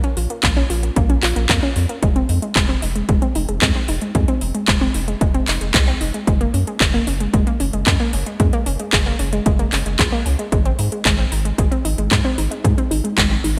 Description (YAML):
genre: italo disco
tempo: 113 BPM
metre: 4/4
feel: straight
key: unclear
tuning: A4 = 441 Hz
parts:
  - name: unison pluck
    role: arpeggios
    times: 0.0-13.6 s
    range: Ab3 to F4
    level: -25 LUFS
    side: equal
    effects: vintage 12-bit sampler grit, delay
  - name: house drum kit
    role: drums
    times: 0.0-13.5 s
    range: handclaps, hi-hat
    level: -24 LUFS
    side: equal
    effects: overdrive
  - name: round analog bass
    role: bass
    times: 0.2-13.6 s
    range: F1 to Ab2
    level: -23 LUFS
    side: equal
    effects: none
  - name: electronic kick drum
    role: drums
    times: 0.4-13.3 s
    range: none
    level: -22 LUFS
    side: equal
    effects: overdrive
room: moderate lush hall reverb, RT60 2.1 s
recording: bright 1980s-style digital production, faint mains hum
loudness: -18 LUFS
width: mono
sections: 0.0-13.6 A section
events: none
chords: 0.0 Bbm; 2.0 Fm7; 6.3 Gbadd9; 10.5 Ab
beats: 0.43 0.96 1.50 | 2.03 2.56 3.09 3.62 | 4.15 4.68 5.21 5.74 | 6.27 6.80 7.34 7.87 | 8.40 8.93 9.46 9.99 | 10.52 11.05 11.58 12.11 | 12.64 13.18